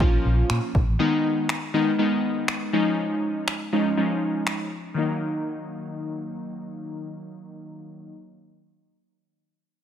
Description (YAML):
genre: dance-pop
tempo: 121 BPM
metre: 4/4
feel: straight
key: Eb minor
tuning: A4 = 440 Hz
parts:
  - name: glassy digital keys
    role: accompaniment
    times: 0.0-8.1 s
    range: Eb3 to F4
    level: -25 LUFS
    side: left 1 dB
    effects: chorus, sidechain pumping, low-pass filter
  - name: vintage muted fingered electric bass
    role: bass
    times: 0.0-1.0 s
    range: A1 to Bb2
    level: -22 LUFS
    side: equal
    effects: sidechain pumping
  - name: punchy analog drum machine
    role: drums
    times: 0.0-4.6 s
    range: finger snaps, kick drum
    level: -26 LUFS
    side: equal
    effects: none
room: light reverb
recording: none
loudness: -22 LUFS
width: side -9 dB against mid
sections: 0.0-5.0 A section; 5.0-8.9 B section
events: filter sweep on synth keys 0.0-5.0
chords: 0.0 Bbm; 1.0 Abm; 2.7 Dbadd9; 5.0 Ebm